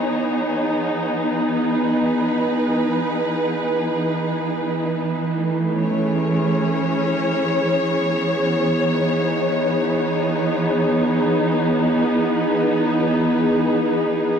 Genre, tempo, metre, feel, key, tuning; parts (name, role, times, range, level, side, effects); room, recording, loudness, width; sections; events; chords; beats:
ambient; free time; E major; A4 = 437 Hz
dark studio string section; solo; 0.0-14.4 s; E3 to C#5; -18 LUFS; equal; tape echo
wet huge ambient reverb, RT60 7.5 s; dark, warm production; -18 LUFS; side -7 dB against mid
0.0-10.3 A section; 10.3-14.4 B section
0.0 Emaj7; 4.8 Amaj7; 7.5 Emaj7
free time